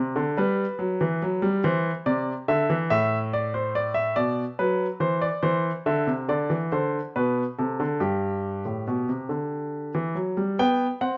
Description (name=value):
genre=classical, baroque-style two-part invention for grand piano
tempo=47 BPM (dotted quarters)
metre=6/8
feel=straight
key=G major from 5.4 s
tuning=A4 = 440 Hz
part: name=clear baby grand piano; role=solo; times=0.0-11.2 s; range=G2 to G5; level=-25 LUFS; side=equal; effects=none
room=moderate stone room reverb, RT60 0.9 s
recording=nothing above 7.7 kHz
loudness=-25 LUFS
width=mono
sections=0.0-10.6 A section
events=none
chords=0.4 G; 1.6 C; 2.9 Amadd11; 4.2 Bm; 5.4 C; 6.7 D5; 8.0 G5; 10.6 G/B